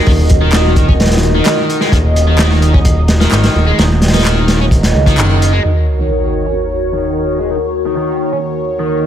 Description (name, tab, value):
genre	breakbeat, breaks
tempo	129 BPM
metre	4/4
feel	straight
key	Eb minor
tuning	A4 = 439 Hz
part	phased analog pad	sustained chords	0.0-9.1 s	Eb2 to Eb5	-17 LUFS	right 1 dB	phaser, chorus, sidechain pumping
part	biting overdriven guitar	riff	0.0-9.1 s	Eb3 to Db4	-19 LUFS	left 1 dB	vintage 12-bit sampler grit, low-pass filter, ping-pong delay
part	fat analog bass	bass	0.1-5.6 s	Eb1 to Db2	-12 LUFS	equal	none
part	crunchy breakbeat drum kit	drums	0.1-5.5 s	hi-hat, kick drum, snare drum	-13 LUFS	equal	none
part	electronic handclaps	drums	0.5-5.3 s	none	-22 LUFS	equal	overdrive
part	sub drop	sound effects	5.6-7.5 s	none	-18 LUFS	equal	none
room	light reverb, small room reverb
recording	none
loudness	-10 LUFS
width	side -10 dB against mid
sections	0.0-5.6 A section; 5.6-9.1 B section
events	band accent 5.2; impact 5.6-7.5; filter sweep on overdriven electric guitar 5.6-9.1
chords	0.0 Ebm; 5.6 Ebm7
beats	| 0.06 0.53 0.99 1.46 | 1.92 2.39 2.85 3.32 | 3.78 4.25 4.71 5.18 | 5.64 6.11 6.57 7.04 | 7.50 7.97 8.44 8.90